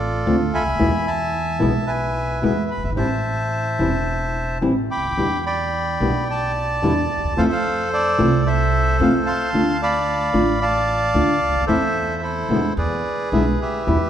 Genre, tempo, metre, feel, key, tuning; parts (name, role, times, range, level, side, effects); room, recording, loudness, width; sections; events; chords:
tango; 110 BPM; 4/4; rubato; A4 = 439 Hz
bandoneon; melody; 0.0-14.1 s; E4 to D6; -21 LUFS; equal
upright bass; bass; 0.0-14.1 s; E1 to F2; -24 LUFS; right 1 dB
nylon-string guitar; accompaniment; 0.3-14.0 s; B2 to F4; -22 LUFS; left 1 dB
moderate scoring stage reverb, RT60 2.0 s; recorded in a church or concert hall; -18 LUFS; side -10 dB against mid
0.0-14.1 A section
0.0 Dm; 0.8 E; 3.0 Am; 5.2 Em7; 7.4 Fmaj7; 9.5 Dm; 11.7 Am/E; 12.8 E7